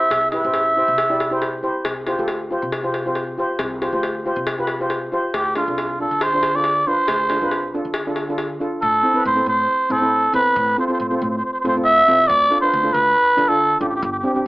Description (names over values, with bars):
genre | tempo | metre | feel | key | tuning
calypso | 138 BPM | 4/4 | swing 53% on 16ths | unclear | A4 = 436 Hz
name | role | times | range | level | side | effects
trumpet with cup mute | melody | 0.0-1.6, 5.4-14.4 s | F4 to E5 | -16 LUFS | right 1 dB | none
steel pan | accompaniment | 0.0-14.5 s | C4 to D5 | -23 LUFS | equal | none
upright bass | bass | 0.1-14.2 s | G1 to D3 | -32 LUFS | equal | none
cowbell | percussion | 0.1-8.5 s | none | -26 LUFS | left 1 dB | none
room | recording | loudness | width
moderate small room reverb, RT60 0.5 s | AM radio sound | -16 LUFS | side -21 dB against mid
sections
0.0-8.8 A section; 8.8-14.5 B section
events
none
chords
0.0 C; 1.9 Fsus2/C; 5.3 Dm7; 8.8 Am; 10.6 F/A; 12.3 Dm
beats
| 0.11 0.55 0.98 1.42 | 1.85 2.29 2.73 3.16 | 3.60 4.03 4.47 4.91 | 5.34 5.78 6.21 6.65 | 7.08 7.52 7.95 8.39 | 8.82 9.26 9.69 10.12 | 10.56 10.99 11.42 11.86 | 12.29 12.72 13.16 13.59 | 14.02 14.46